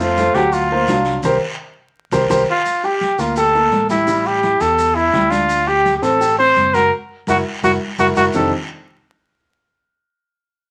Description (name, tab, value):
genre	Afro-Cuban jazz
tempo	169 BPM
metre	4/4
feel	straight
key	unclear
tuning	A4 = 440 Hz
part	breathy trumpet	melody	0.0-8.5 s	E4 to C5	-17 LUFS	equal	none
part	warm grand piano	accompaniment	0.0-8.5 s	F3 to G5	-22 LUFS	equal	none
part	fingered electric bass	bass	0.0-8.5 s	F1 to F2	-29 LUFS	equal	none
part	congas	percussion	0.0-8.4 s	none	-28 LUFS	equal	none
part	maracas	percussion	0.0-8.4 s	none	-38 LUFS	equal	none
part	guiro	percussion	0.2-8.4 s	none	-35 LUFS	equal	none
room	moderate studio reverb, RT60 0.7 s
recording	vinyl crackle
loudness	-16 LUFS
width	mono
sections	0.0-2.7 A section; 2.7-8.3 B section; 8.3-9.8 C section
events	band accent 1.2-2.7, 6.9-8.3; drum fill 1.8-2.7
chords	0.0 F; 0.5 D7alt; 1.2 C5; 2.7 Gmadd9; 4.1 A5; 5.5 D7sus4; 6.9 Gb7; 8.3 Fsus2